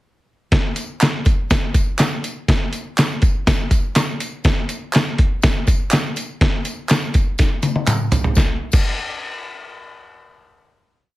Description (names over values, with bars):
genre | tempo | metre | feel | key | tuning
soul | 122 BPM | 4/4 | straight | none | none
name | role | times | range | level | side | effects
lo-fi sampler-style drum kit | drums | 0.5-8.8 s | crash cymbal, hi-hat, kick drum, snare drum, toms | -16 LUFS | equal | none
tambourine and handclaps | percussion | 0.8-8.9 s | none | -27 LUFS | right 1 dB | none
room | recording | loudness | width
light reverb | heavily compressed radio sound, multiband compression | -16 LUFS | side -17 dB against mid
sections
0.5-8.4 verse; 8.4-10.3 final hit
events
drum fill 7.4-8.4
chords
none